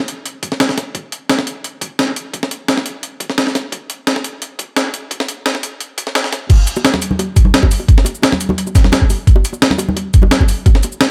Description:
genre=drum and bass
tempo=173 BPM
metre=4/4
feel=straight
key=none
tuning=none
part: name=breakbeat sampler-style drum kit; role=drums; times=0.0-11.1 s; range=crash cymbal, hi-hat, shaker, snare drum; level=-18 LUFS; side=equal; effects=studio reverb
part: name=electronic kick drum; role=drums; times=0.4-10.7 s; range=none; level=-12 LUFS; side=equal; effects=high-pass filter on kick, studio reverb, high-pass filter on room
part: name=bongos and congas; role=percussion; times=6.5-10.9 s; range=none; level=-22 LUFS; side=equal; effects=none
room=light reverb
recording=high-pass filter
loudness=-15 LUFS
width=mono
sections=0.0-6.5 A section; 6.5-11.1 B section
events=build-up 0.0-6.5; drop 6.5-11.1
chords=none

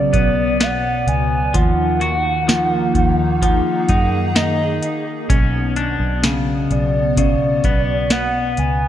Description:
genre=dream pop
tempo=64 BPM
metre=4/4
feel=straight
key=unclear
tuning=A4 = 439 Hz
part: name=warbly nostalgic lead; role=melody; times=0.0-8.9 s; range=D5 to G#5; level=-21 LUFS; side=right 1 dB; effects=chorus, digital delay
part: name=hollow soft pad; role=sustained chords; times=0.0-8.9 s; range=B2 to D5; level=-23 LUFS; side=equal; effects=ensemble chorus
part: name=semi-hollow electric guitar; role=arpeggios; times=0.0-8.9 s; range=C#3 to F#4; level=-21 LUFS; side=left 2 dB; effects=wide subtle chorus, digital delay
part: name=vintage muted fingered electric bass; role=bass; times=0.0-8.9 s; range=B1 to F#2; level=-22 LUFS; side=equal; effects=none
part: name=booming analog drum machine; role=drums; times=0.1-8.8 s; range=hi-hat, kick drum, snare drum, tambourine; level=-18 LUFS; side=equal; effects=none
room=moderate plate reverb, RT60 2.4 s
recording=bright 1980s-style digital production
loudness=-15 LUFS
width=side -11 dB against mid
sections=0.0-8.9 A section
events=none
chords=0.0 Bmadd9; 1.5 D#madd9; 5.3 Bmadd9

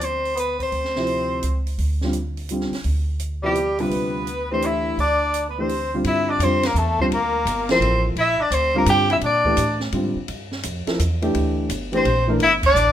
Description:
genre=modal jazz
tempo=170 BPM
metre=3/4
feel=swing 65% on 8ths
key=G dorian from 6.0 s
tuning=A4 = 440 Hz
part: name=clear soprano saxophone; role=melody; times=0.0-9.8, 12.0-12.9 s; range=G4 to G5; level=-21 LUFS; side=equal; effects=none
part: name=clear tenor saxophone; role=second line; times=0.0-9.8, 11.9-12.9 s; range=G3 to G4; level=-25 LUFS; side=left 2 dB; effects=none
part: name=upright bass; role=bass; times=0.0-12.9 s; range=G1 to Bb2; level=-25 LUFS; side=right 1 dB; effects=none
part: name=open jazz drum kit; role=drums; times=0.0-12.9 s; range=crash cymbal, hi-hat, kick drum, ride cymbal, snare drum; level=-30 LUFS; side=right 1 dB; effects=none
part: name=warm baby grand piano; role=accompaniment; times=1.0-12.4 s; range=C3 to Bb4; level=-24 LUFS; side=equal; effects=none
room=light reverb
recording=minimal, uncompressed stereo recording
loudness=-18 LUFS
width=side -10 dB against mid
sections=0.0-6.0 A section; 6.0-12.9 B section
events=band accent 12.6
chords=0.0 Csus2/D; 1.8 Dm7; 3.9 Csus2/D; 6.0 Gm69

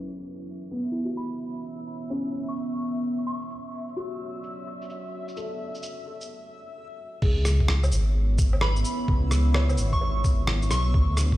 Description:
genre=future garage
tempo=129 BPM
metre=4/4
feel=swing 64% on 16ths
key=C# phrygian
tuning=A4 = 438 Hz
part: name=felt-muted upright piano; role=accompaniment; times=0.0-11.1 s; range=B3 to C#5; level=-35 LUFS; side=equal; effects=sidechain pumping, low-pass filter, analog delay
part: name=deep dark ambient pad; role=sustained chords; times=0.0-11.4 s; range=B3 to D5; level=-34 LUFS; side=equal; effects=chorus, built-in reverb, vintage 12-bit sampler grit, sidechain pumping
part: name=backwards swelling texture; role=texture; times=0.8-11.4 s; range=E5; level=-42 LUFS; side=left 1 dB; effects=built-in reverb
part: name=lo-fi sampler-style drum kit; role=drums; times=0.2-11.3 s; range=crash cymbal, rim click, shaker, woodblock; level=-31 LUFS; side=equal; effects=none
part: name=soft synth bell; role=melody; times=1.2-3.6, 8.6-11.0 s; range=B5 to C#6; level=-35 LUFS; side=right 1 dB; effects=chorus, phaser, vintage 12-bit sampler grit, analog delay
part: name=dark detuned saw bass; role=bass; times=7.2-11.4 s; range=G#1 to D2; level=-23 LUFS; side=equal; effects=sidechain pumping
part: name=electronic kick drum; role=drums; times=7.2-11.4 s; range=none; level=-22 LUFS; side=equal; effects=none
room=digital ambience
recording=played on a big sound system in a bare room, stone room reverb, low-pass filter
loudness=-23 LUFS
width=side -16 dB against mid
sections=0.0-7.2 A section; 7.2-11.4 B section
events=filter sweep on ambient pad 0.0-7.2; filter sweep on felt piano 0.0-7.2; filter sweep 0.0-7.2; break 6.3-7.2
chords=0.0 C#m7; 3.5 Dmaj7; 7.2 C#m7

